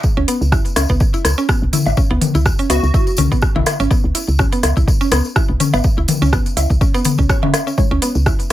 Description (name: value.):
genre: minimal techno.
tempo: 124 BPM.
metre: 4/4.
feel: swing 55% on 16ths.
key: C# minor.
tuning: A4 = 440 Hz.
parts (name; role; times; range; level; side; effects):
electronic kick drum; drums; 0.0-8.4 s; none; -16 LUFS; equal; none.
tambourine; percussion; 0.0-8.5 s; none; -28 LUFS; left 2 dB; none.
mallet-like synth pluck; riff; 0.2-8.5 s; B3 to C#5; -22 LUFS; right 1 dB; chorus, sidechain pumping, ping-pong delay.
woody FM bass; bass; 0.2-8.5 s; G#1 to C#2; -17 LUFS; equal; sidechain pumping.
minimal click drum kit; drums; 0.3-8.5 s; hi-hat, rim click; -21 LUFS; right 2 dB; none.
booming analog drum machine; percussion; 0.8-7.6 s; rim click, toms, woodblock; -19 LUFS; left 3 dB; none.
plucky unison lead; melody; 2.7-3.2 s; F#4; -23 LUFS; equal; analog chorus, dub echo.
filtered dub chord stab; stabs; 7.8-7.9 s; G#3 to C#5; -25 LUFS; left 3 dB; phaser, dub echo.
room: light reverb.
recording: none.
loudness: -13 LUFS.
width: side -14 dB against mid.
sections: 0.0-8.5 A section.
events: drop 0.0-8.5.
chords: none.